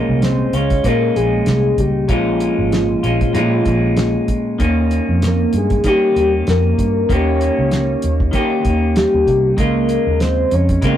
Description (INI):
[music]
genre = indie pop, bedroom pop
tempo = 96 BPM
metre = 4/4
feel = swing 55% on 16ths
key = Bb dorian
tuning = A4 = 437 Hz
[part]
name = soft octave-layered synth lead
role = melody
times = 0.0-11.0 s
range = F4 to Db5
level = -18 LUFS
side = left 1 dB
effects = chorus, phaser
[part]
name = electric guitar through a small old amp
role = accompaniment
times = 0.0-11.0 s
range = Bb2 to G4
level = -19 LUFS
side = left 1 dB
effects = warbly pitch drift
[part]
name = vintage muted fingered electric bass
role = bass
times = 0.1-11.0 s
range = Ab1 to Eb3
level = -18 LUFS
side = right 1 dB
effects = none
[part]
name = cloth-damped thuddy drum kit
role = drums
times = 0.2-11.0 s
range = hi-hat, kick drum, snare drum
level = -20 LUFS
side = equal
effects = none
[sound]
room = moderate studio reverb, RT60 0.5 s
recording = rough rehearsal-room recording, warm saturation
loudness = -14 LUFS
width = side -10 dB against mid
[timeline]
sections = 0.0-11.0 A section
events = none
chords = 0.0 Bbm7; 4.6 Eb7; 9.6 Dbmaj7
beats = 0.22 0.85 1.47 | 2.10 2.72 3.35 3.97 | 4.59 5.22 5.84 6.47 | 7.09 7.71 8.34 8.96 | 9.58 10.21 10.83